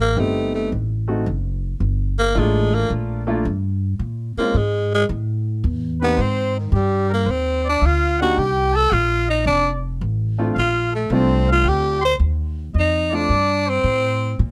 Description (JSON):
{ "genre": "jazz", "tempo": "110 BPM", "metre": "4/4", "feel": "swing 69% on 8ths", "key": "Bb major", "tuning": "A4 = 435 Hz", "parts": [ { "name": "growling tenor saxophone", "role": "melody", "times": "0.0-14.4 s", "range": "Eb3 to C5", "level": "-22 LUFS", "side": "equal", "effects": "none" }, { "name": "upright bass", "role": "bass", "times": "0.0-14.5 s", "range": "F1 to Bb2", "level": "-23 LUFS", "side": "equal", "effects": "none" }, { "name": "clear grand piano", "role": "accompaniment", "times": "0.2-13.3 s", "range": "Ab3 to G4", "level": "-26 LUFS", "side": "equal", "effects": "none" }, { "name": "warm trumpet", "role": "second line", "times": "6.0-14.4 s", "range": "Eb4 to C6", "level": "-30 LUFS", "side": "equal", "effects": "none" } ], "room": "little or no reverb", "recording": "close, detailed microphones", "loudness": "-20 LUFS", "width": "mono", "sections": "0.0-14.5 A section", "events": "none", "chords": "0.0 Am7b5; 0.7 F#dim7; 1.8 Gm7; 4.0 Bbm9; 5.1 A5; 6.2 Ab5; 8.4 F9; 9.5 F; 10.6 Bbmaj9" }